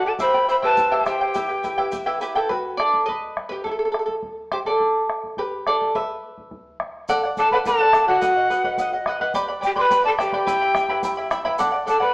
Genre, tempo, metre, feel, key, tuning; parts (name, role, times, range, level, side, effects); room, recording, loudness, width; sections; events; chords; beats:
andean folk, Andean ensemble; 105 BPM; 2/4; straight; E minor; A4 = 440 Hz
bright quena; melody; 0.0-2.2, 7.4-12.1 s; F#5 to C6; -19 LUFS; left 1 dB; slapback echo
breathy large pan pipes; second line; 0.0-2.2, 7.4-12.1 s; F#4 to C5; -24 LUFS; equal
charango; accompaniment; 0.0-12.1 s; E4 to B5; -22 LUFS; equal
bombo; percussion; 0.2-12.1 s; -31 LUFS; left 1 dB
tube shaker; percussion; 0.2-2.3, 7.1-12.0 s; -46 LUFS; right 2 dB
wet stone room reverb, RT60 1.3 s; band playing live in one room, small speaker sound; -18 LUFS; side -22 dB against mid
0.0-2.5 A section; 2.5-7.1 B section; 7.1-12.1 C section
charango solo 2.5-7.1
0.2 C; 1.4 Em; 2.5 B5; 3.7 N.C.; 4.8 G5; 5.9 N.C.; 7.1 D; 8.2 B; 9.3 G; 10.5 Em; 11.6 D
| 0.20 0.78 | 1.35 1.93 | 2.50 3.08 | 3.65 4.23 | 4.80 5.37 | 5.95 6.52 | 7.08 7.65 | 8.22 8.79 | 9.35 9.91 | 10.48 11.04 | 11.60